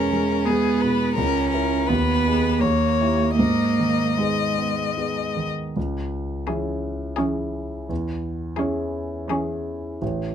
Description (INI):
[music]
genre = classical, slow romantic movement for piano quartet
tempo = 75-87 BPM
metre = 3/4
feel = rubato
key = G# minor, C# minor from 5.8 s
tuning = A4 = 440 Hz
[part]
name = clear violin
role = melody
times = 0.0-9.8 s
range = G#4 to D#5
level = -26 LUFS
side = left 8 dB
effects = none
[part]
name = rich cello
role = second line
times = 0.0-9.8 s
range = E3 to C#4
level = -23 LUFS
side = right 4 dB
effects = none
[part]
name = warm concert grand piano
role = accompaniment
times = 0.0-10.3 s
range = A1 to B4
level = -25 LUFS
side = equal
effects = none
[part]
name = warm viola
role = accompaniment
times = 6.5-9.8 s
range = C#4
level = -27 LUFS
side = right 2 dB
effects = none
[sound]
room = moderate small room reverb, RT60 0.5 s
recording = none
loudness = -21 LUFS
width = side -9 dB against mid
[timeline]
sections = 0.0-5.8 A section; 5.8-10.3 B section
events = none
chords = 0.0 E; 1.2 A#dim/C#; 1.9 G#m/D#; 2.6 D#7b9; 3.4 G#m; 5.8 C#m; 7.9 C#m/E